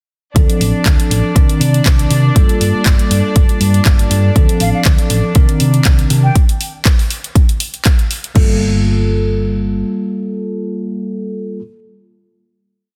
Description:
filtered disco house; 120 BPM; 4/4; swing 54% on 16ths; G minor; A4 = 440 Hz
bell-like tine electric piano; accompaniment; 0.3-11.6 s; Eb3 to Bb4; -20 LUFS; equal; phaser, sidechain pumping, low-pass filter
clear studio string section; sustained chords; 0.4-6.4 s; D4 to D5; -26 LUFS; equal; sidechain pumping, low-pass filter
hollow-body short-scale fingered electric bass; bass; 0.4-9.8 s; G1 to C3; -17 LUFS; equal; sidechain pumping, low-pass filter
electronic kick drum; drums; 0.4-8.5 s; -13 LUFS; equal; studio reverb
house drum kit; drums; 0.4-8.5 s; crash cymbal, handclaps, hi-hat; -23 LUFS; equal; sidechain pumping on hats, studio reverb, sidechain pumping on cymbals
breathy mellow silver concert flute; melody; 4.6-6.4 s; F5 to G5; -26 LUFS; equal; sidechain pumping, low-pass filter, digital delay
little or no reverb; dense, heavily limited modern master; -13 LUFS; mono
0.4-8.4 groove; 8.4-12.4 final chord
filter sweep 0.4-8.4
0.4 Dm7; 1.4 Cm9; 2.4 Gm9; 4.4 Dm7; 5.4 Cm9; 6.4 N.C.; 8.4 Gm9
| 0.36 0.86 1.36 1.86 | 2.36 2.86 3.36 3.86 | 4.36 4.86 5.36 5.86 | 6.36 6.86 7.36 7.86 | 8.36 8.86 9.36 9.86 | 10.36 10.86 11.36

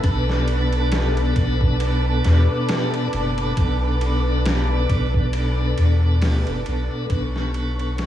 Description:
trip hop; 68 BPM; 4/4; swing 56% on 16ths; B minor; A4 = 441 Hz
tonewheel organ; accompaniment; 0.0-8.1 s; B2 to A4; -24 LUFS; equal; overdrive, slow rotary speaker, tremolo, tape echo
string machine, cellos; sustained chords; 0.0-8.1 s; B4 to D6; -27 LUFS; equal; phaser, ensemble chorus
soft dub sub bass; bass; 0.0-8.1 s; F#1 to E2; -20 LUFS; equal
trip hop sampler-style drum kit; drums; 0.0-8.1 s; hi-hat, kick drum, ride cymbal, snare drum; -26 LUFS; equal
little or no reverb; small room ambience; -18 LUFS; side -12 dB against mid
0.0-8.1 A section
fade-out 4.7-8.1
0.0 Bm7
| 0.04 0.92 1.81 2.69 | 3.57 4.45 5.34 6.22 | 7.10 7.98

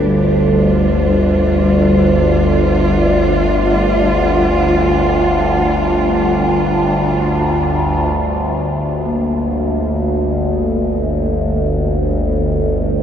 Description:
dark ambient drone; free time; G minor; A4 = 441 Hz
warm studio cello section; sustained chords; 0.0-8.1 s; G3 to G4; -18 LUFS; right 1 dB
gamelan-type bronze metallophone; arpeggios; 0.0-13.0 s; G3 to Bb3; -22 LUFS; equal; diffuse ambient delay
overtone-sweeping drone; drone; 0.0-13.0 s; G1 to D2; -14 LUFS; equal; chorus, built-in reverb
wet huge ambient reverb, RT60 7.9 s; dreamy mix soaked in reverb; -12 LUFS; side -8 dB against mid
0.0-8.1 A section; 8.1-13.0 B section
fade-in on cello section 0.0-8.1
0.0 G5; 8.1 Gm
free time

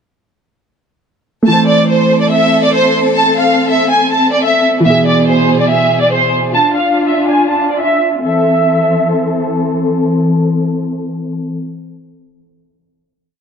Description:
hip hop; 142 BPM; 4/4; half-time; A harmonic minor; A4 = 440 Hz
warm concert grand piano; accompaniment; 1.4-6.6 s; B2 to C5; -14 LUFS; right 1 dB
warm symphonic violin section; melody; 1.5-9.5 s; C5 to A5; -12 LUFS; right 1 dB
clear symphonic string section; sustained chords; 1.5-11.6 s; B2 to A4; -15 LUFS; left 2 dB
light reverb, small room ambience; dark, warm production, low-pass filter; -10 LUFS; side -6 dB against mid
1.5-8.2 breakdown; 8.2-11.6 final chord
1.5 Am; 4.9 E; 6.5 Dm; 8.2 Am
| 1.47 1.90 2.32 2.74 | 3.16 3.59 4.01 4.43 | 4.85 5.28 5.70 6.12 | 6.54 6.97 7.39 7.81 | 8.23 8.66 9.08 9.50 | 9.92 10.35 10.77 11.19

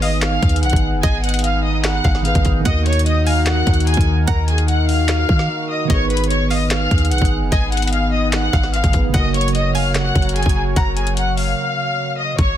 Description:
hip hop, trap; 148 BPM; 4/4; half-time; G# dorian; A4 = 440 Hz
warm studio violin section; melody; 0.0-12.6 s; G#4 to F#6; -22 LUFS; left 1 dB; low-pass filter, ping-pong delay
string-like resonator pluck; second line; 0.0-11.5 s; D#5 to G#5; -30 LUFS; right 1 dB; chorus, ping-pong delay
mellow tine electric piano; accompaniment; 0.0-12.4 s; C#3 to B4; -25 LUFS; right 4 dB; medium stereo tremolo, low-pass filter
sweeping resonant pad; sustained chords; 0.0-12.4 s; D#3 to C#5; -25 LUFS; left 1 dB; chorus, phaser
clean 808-style bass; bass; 0.0-12.6 s; F#1 to D#3; -19 LUFS; equal
trap drum kit; drums; 0.0-12.5 s; handclaps, hi-hat, kick drum, snare drum; -20 LUFS; equal
digital ambience; dense, heavily limited modern master; -15 LUFS; side -11 dB against mid
0.0-12.4 A section
break 5.5-5.9, 11.6-12.4
0.0 G#m; 2.7 D#m; 5.9 G#m; 9.1 F#
0.22 0.63 | 1.03 1.44 1.84 2.25 | 2.65 3.06 3.47 3.87 | 4.28 4.68 5.09 5.49 | 5.90 6.30 6.71 7.12 | 7.52 7.93 8.33 8.74 | 9.14 9.55 9.95 10.36 | 10.76 11.17 11.57 11.98 | 12.38

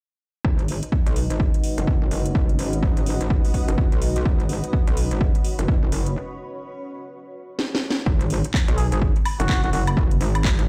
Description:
bass house; 126 BPM; 4/4; swing 60% on 16ths; G# minor; A4 = 440 Hz
dark analog pad; sustained chords; 0.4-6.1 s; G#3 to D#5; -36 LUFS; equal; chorus, sidechain pumping
metallic wobble bass; bass; 0.4-10.7 s; F#1 to B1; -26 LUFS; equal; chorus, tube saturation, sidechain pumping
electronic kick drum; drums; 0.4-10.6 s; -23 LUFS; equal; overdrive
granular cloud pad; texture; 1.6-6.2 s; C#4 to D#5; -35 LUFS; equal; built-in reverb, sidechain pumping
house drum kit; drums; 0.6-10.7 s; handclaps, hi-hat, snare drum, woodblock; -31 LUFS; equal; overdrive
trumpet with cup mute; melody; 8.8-9.8 s; F#4 to G#4; -32 LUFS; equal; vintage 12-bit sampler grit, tape echo
little or no reverb; played on a big sound system in a bare room, large studio reverb; -22 LUFS; mono
0.4-8.1 A section; 8.1-10.7 B section
break 6.2-8.1; drum fill 7.6-8.1
0.4 G#m; 8.1 N.C.
| 0.45 0.92 1.40 1.87 | 2.35 2.83 3.30 3.78 | 4.25 4.73 5.21 5.68 | 6.16 6.64 7.11 7.59 | 8.06 8.54 9.02 9.49 | 9.97 10.45

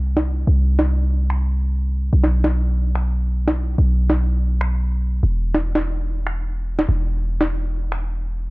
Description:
future bass; 145 BPM; 4/4; half-time; C major; A4 = 440 Hz
warm 808-style bass; bass; 0.0-8.5 s; E1 to C2; -18 LUFS; equal
electronic snare drum and finger snaps; drums; 0.2-8.0 s; -23 LUFS; equal; low-pass filter on snare
little or no reverb; nothing above 10.4 kHz; -18 LUFS; side -23 dB against mid
0.0-8.5 A section
0.06 | 0.47 0.89 1.30 1.71 | 2.13 2.54 2.96 3.37 | 3.78 4.20 4.61 5.02 | 5.44 5.85 6.27 6.68 | 7.09 7.51 7.92 8.34

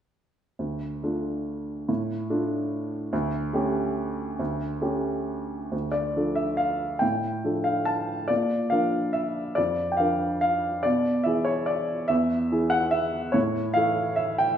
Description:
classical, piano waltz; 127-153 BPM; 3/4; rubato; D minor; A4 = 440 Hz
warm upright piano; solo; 0.6-14.6 s; D2 to A5; -24 LUFS; equal
wet large studio reverb, RT60 1.3 s; heard from further back in the room; -24 LUFS; side -9 dB against mid
0.6-5.7 A section; 5.7-14.6 B section
0.6 Dm; 3.1 A7/D; 5.7 Dm; 8.3 Bb; 10.8 E7/B; 13.3 A
| 0.60 1.03 1.47 | 1.89 2.29 2.71 | 3.12 3.53 3.96 | 4.39 4.82 5.27 | 5.73 6.16 6.60 | 7.02 7.44 7.88 | 8.30 8.72 9.15 | 9.58 10.00 10.43 | 10.85 11.26 11.68 | 12.10 12.51 12.93 | 13.35 13.76 14.19

